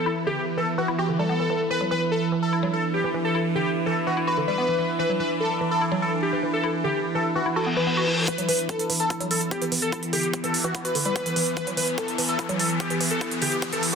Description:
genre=psychedelic trance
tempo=146 BPM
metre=4/4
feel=straight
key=unclear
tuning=A4 = 445 Hz
part: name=wide unison lead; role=melody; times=0.0-13.8 s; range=F#4 to B4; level=-26 LUFS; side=left 1 dB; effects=phaser, sidechain pumping, ping-pong delay
part: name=evolving wavetable pad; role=sustained chords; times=0.0-13.9 s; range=E3 to D4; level=-28 LUFS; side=right 1 dB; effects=phaser, built-in reverb, sidechain pumping
part: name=deep dark ambient pad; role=texture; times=0.0-13.9 s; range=E4 to B5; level=-32 LUFS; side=equal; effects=chorus, built-in reverb, sidechain pumping
part: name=woody wave-folded pluck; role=riff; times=0.1-13.8 s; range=D3 to F#4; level=-30 LUFS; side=equal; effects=chorus, auto-pan, sidechain pumping, ping-pong delay
part: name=reverse cymbal and riser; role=sound effects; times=7.6-13.9 s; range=none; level=-31 LUFS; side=left 2 dB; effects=none
part: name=electronic hi-hat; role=drums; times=8.3-13.9 s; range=none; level=-27 LUFS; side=right 3 dB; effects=none
part: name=electronic kick drum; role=drums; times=8.3-13.7 s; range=none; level=-29 LUFS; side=equal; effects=high-pass filter on kick
room=wet lush hall reverb, RT60 1.7 s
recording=dense, heavily limited modern master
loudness=-22 LUFS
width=side -6 dB against mid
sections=0.0-8.3 A section; 8.3-13.9 B section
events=filter sweep on synth arpeggio sound 0.0-8.3; reverse cymbal 7.6-8.3; build-up 8.3-13.9; riser 8.3-13.9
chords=0.0 E5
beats=| 0.06 0.47 0.88 1.29 | 1.71 2.12 2.53 2.94 | 3.35 3.76 4.17 4.58 | 4.99 5.40 5.82 6.23 | 6.64 7.05 7.46 7.87 | 8.28 8.69 9.10 9.51 | 9.92 10.34 10.75 11.16 | 11.57 11.98 12.39 12.80 | 13.21 13.62

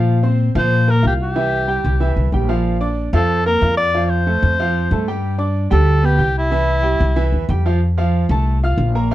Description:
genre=latin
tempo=186 BPM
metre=4/4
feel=straight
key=F major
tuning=A4 = 436 Hz
part: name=clear grand piano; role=accompaniment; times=0.0-9.1 s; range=E3 to G6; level=-21 LUFS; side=right 2 dB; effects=none
part: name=upright bass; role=bass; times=0.0-9.1 s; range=Bb1 to Bb2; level=-17 LUFS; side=left 1 dB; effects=none
part: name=clear cor anglais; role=melody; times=0.6-7.5 s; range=E4 to D5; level=-19 LUFS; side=left 1 dB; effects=none
room=light reverb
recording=dark, warm production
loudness=-14 LUFS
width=side -14 dB against mid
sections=0.0-7.8 A section; 7.8-9.1 B section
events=none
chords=0.1 Bbsus2; 1.4 C; 2.7 Bb; 3.9 F; 5.2 G; 6.5 C; 7.8 F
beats=| 0.07 0.40 0.72 1.04 | 1.36 1.69 2.01 2.33 | 2.65 2.98 3.30 3.62 | 3.94 4.27 4.59 4.91 | 5.23 5.56 5.88 6.20 | 6.52 6.85 7.17 7.49 | 7.81 8.13 8.46 8.78 | 9.10

